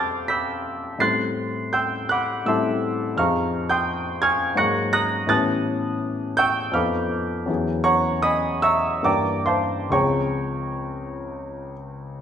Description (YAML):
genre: classical, impressionist solo piano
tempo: 64-87 BPM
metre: 3/4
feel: rubato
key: unclear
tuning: A4 = 436 Hz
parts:
  - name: clear grand piano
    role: solo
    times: 0.0-12.2 s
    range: Db2 to Db7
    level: -20 LUFS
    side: equal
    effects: none
room: wet recital hall reverb, RT60 1.5 s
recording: minimal, uncompressed stereo recording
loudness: -20 LUFS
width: side -8 dB against mid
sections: 0.0-12.2 A section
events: none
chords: 0.0 Fadd9; 1.0 Am7; 3.2 Fm7; 4.6 Ab9sus4; 5.3 A9; 6.8 F7#11; 7.5 E69; 9.0 Gm6; 9.9 Dbmaj7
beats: 0.29 | 1.00 1.73 2.46 | 3.18 3.88 4.59 | 5.29 6.03 6.75 | 7.48 8.23 9.04 | 9.92 10.85 11.75